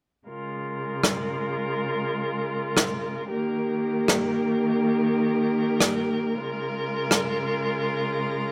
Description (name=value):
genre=folktronica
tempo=79 BPM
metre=4/4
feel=swing 56% on 16ths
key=Bb dorian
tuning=A4 = 439 Hz
part: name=dark string quartet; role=sustained chords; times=0.3-8.5 s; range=Db3 to Bb4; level=-27 LUFS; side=equal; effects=low-pass filter
part: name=rim click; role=drums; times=1.0-7.3 s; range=none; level=-25 LUFS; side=equal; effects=none
room=moderate plate reverb, RT60 2.0 s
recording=none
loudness=-25 LUFS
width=mono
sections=0.3-8.5 A section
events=none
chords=0.3 Bbm7; 3.3 Eb; 6.4 Bbm7/Db